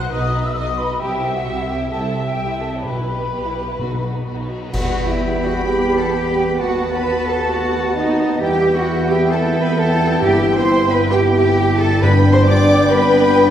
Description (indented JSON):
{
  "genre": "classical, dramatic, fast romantic movement for symphony orchestra",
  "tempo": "132 BPM",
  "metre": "4/4",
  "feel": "straight",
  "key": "E minor",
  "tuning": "A4 = 440 Hz",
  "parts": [
    { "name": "warm symphonic violin section", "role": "melody", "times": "0.0-13.5 s", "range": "D#4 to B5", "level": "-30 LUFS", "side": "left 5 dB", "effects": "none" },
    { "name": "flute section", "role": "second line", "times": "0.0-13.5 s", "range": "D#5 to F#6", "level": "-26 LUFS", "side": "equal", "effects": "none" },
    { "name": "warm symphonic violin section", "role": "second line", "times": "0.0-13.5 s", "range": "F#4 to D6", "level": "-30 LUFS", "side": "left 1 dB", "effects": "none" },
    { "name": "rich symphonic viola section", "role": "accompaniment", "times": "0.0-13.5 s", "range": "B3 to E5", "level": "-25 LUFS", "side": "right 2 dB", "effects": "none" },
    { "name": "rich symphonic cello section", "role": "bass", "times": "0.0-13.5 s", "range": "B2 to D5", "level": "-19 LUFS", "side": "equal", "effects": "none" },
    { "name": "rich symphonic double bass section", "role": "bass", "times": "0.0-13.5 s", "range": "G1 to E2", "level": "-22 LUFS", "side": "right 1 dB", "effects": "none" },
    { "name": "cymbal swell, clash cymbals and concert bass drum", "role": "percussion", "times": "1.0-5.6 s", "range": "none", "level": "-28 LUFS", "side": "left 1 dB", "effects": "none" },
    { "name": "timpani", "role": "percussion", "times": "2.8-4.5, 10.2-12.7 s", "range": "G2 to B2", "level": "-22 LUFS", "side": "equal", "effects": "none" },
    { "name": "clear clarinet", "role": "second line", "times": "4.7-13.5 s", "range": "D5 to G5", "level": "-30 LUFS", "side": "left 1 dB", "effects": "none" },
    { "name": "warm oboe", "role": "second line", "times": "4.7-13.5 s", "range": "G5 to B5", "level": "-31 LUFS", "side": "right 1 dB", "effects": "none" },
    { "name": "warm bassoon", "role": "accompaniment", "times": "4.7-13.5 s", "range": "B3", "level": "-25 LUFS", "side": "right 3 dB", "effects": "none" },
    { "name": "mellow French horn section", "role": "sustained chords", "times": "4.7-13.5 s", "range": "G3 to E4", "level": "-22 LUFS", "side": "left 2 dB", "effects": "none" }
  ],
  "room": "wet scoring stage reverb, RT60 1.6 s",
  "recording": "heard from further back in the room",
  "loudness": "-15 LUFS",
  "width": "side -10 dB against mid",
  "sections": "0.0-4.7 A section; 4.7-13.5 B section",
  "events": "band accent 4.7-5.2",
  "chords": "0.0 B; 1.0 C; 2.8 Em/B; 4.7 Em; 6.6 B7/D#; 8.4 Em; 10.2 Em/G; 12.0 G"
}